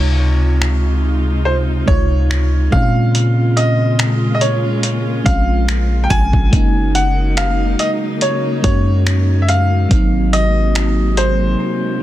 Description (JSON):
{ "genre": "contemporary R&B", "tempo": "71 BPM", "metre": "4/4", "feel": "swing 54% on 16ths", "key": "Bb minor", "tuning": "A4 = 441 Hz", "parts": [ { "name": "bright baby grand piano", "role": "melody", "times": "0.0-12.0 s", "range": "C5 to Ab5", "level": "-21 LUFS", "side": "equal", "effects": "digital delay" }, { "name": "FM electric piano with soft pad layer", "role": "accompaniment", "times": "0.0-12.0 s", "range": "C3 to Gb4", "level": "-22 LUFS", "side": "right 2 dB", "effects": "chorus" }, { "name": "warm studio string section", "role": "sustained chords", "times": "0.0-12.0 s", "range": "C3 to F4", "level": "-23 LUFS", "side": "left 2 dB", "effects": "stereo widening, sidechain pumping" }, { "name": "warm 808-style bass", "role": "bass", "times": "0.0-11.6 s", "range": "Gb1 to Bb2", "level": "-15 LUFS", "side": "equal", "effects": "none" }, { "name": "dusty soul sampler-style drum kit", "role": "drums", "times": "0.6-11.4 s", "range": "finger snaps, hi-hat, kick drum", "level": "-18 LUFS", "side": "equal", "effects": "overdrive, soft clipping on snare" } ], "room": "little or no reverb", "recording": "dense, heavily limited modern master", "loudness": "-13 LUFS", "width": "side -14 dB against mid", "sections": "0.0-12.0 A section", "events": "break 11.6-12.0", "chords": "0.0 Dbmaj9; 2.7 Bbm9; 6.5 Gb6; 9.9 Ab9", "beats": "0.61 1.46 2.30 | 3.15 3.99 4.84 5.68 | 6.53 7.37 8.22 9.06 | 9.91 10.75 11.60" }